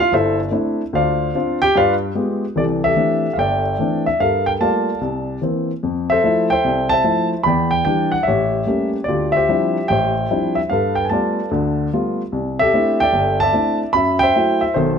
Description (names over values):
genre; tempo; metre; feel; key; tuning
solo jazz; 148 BPM; 4/4; swing 66% on 8ths; C major; A4 = 441 Hz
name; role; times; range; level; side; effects
dark baby grand piano; solo; 0.0-15.0 s; G1 to B5; -16 LUFS; equal; none
room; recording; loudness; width
moderate large studio reverb, RT60 0.9 s; close, detailed microphones; -16 LUFS; side -7 dB against mid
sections
0.0-2.6 A section; 2.6-15.0 B section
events
grand piano solo 0.0-2.6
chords
0.0 C69; 0.9 Dm7; 1.8 G7b9; 2.6 C69; 4.2 Gm9; 5.0 C7; 5.8 Fmaj7; 7.5 Em7; 8.3 A7b9; 9.1 Dm11; 10.7 G9; 12.3 C69; 13.9 F#m7b5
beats
0.12 0.53 | 0.94 1.34 1.75 2.16 | 2.57 2.98 3.38 3.79 | 4.20 4.60 5.01 5.42 | 5.83 6.23 6.64 7.05 | 7.45 7.86 8.27 8.67 | 9.08 9.48 9.89 10.30 | 10.70 11.11 11.51 11.92 | 12.32 12.73 13.13 13.54 | 13.94 14.35 14.76